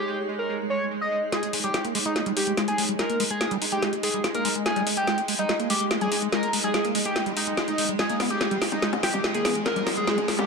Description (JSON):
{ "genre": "psychedelic trance", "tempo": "144 BPM", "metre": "4/4", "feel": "straight", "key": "unclear", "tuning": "A4 = 440 Hz", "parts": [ { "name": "overdriven synth lead", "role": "melody", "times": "0.0-10.5 s", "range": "D#4 to D#5", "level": "-27 LUFS", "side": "equal", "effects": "distortion, phaser, digital delay" }, { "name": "pulsing gated texture", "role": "sustained chords", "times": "0.0-10.5 s", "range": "G#3", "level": "-32 LUFS", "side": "right 6 dB", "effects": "chorus, built-in reverb" }, { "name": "granular cloud pad", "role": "texture", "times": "0.0-10.5 s", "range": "D#4 to D#5", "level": "-35 LUFS", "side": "left 1 dB", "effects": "built-in reverb" }, { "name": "liquid acid bass", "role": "riff", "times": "1.3-10.4 s", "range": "G3 to D#4", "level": "-30 LUFS", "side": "moving between left 9 dB and right 7 dB", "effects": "phaser, auto-pan, digital delay" }, { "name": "drum and bass drum kit", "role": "drums", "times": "1.3-10.5 s", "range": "bongos, hi-hat, snare drum", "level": "-27 LUFS", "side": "left 2 dB", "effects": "none" }, { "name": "riser", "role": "sound effects", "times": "9.0-10.5 s", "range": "none", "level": "-34 LUFS", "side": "right 1 dB", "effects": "none" } ], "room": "moderate lush hall reverb, RT60 1.9 s", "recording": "none", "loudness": "-22 LUFS", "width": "side -4 dB against mid", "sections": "0.0-1.3 A section; 1.3-10.5 B section", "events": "build-up 1.3-10.5; drum fill 1.3-10.5; riser 9.0-10.5", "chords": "0.0 G#5" }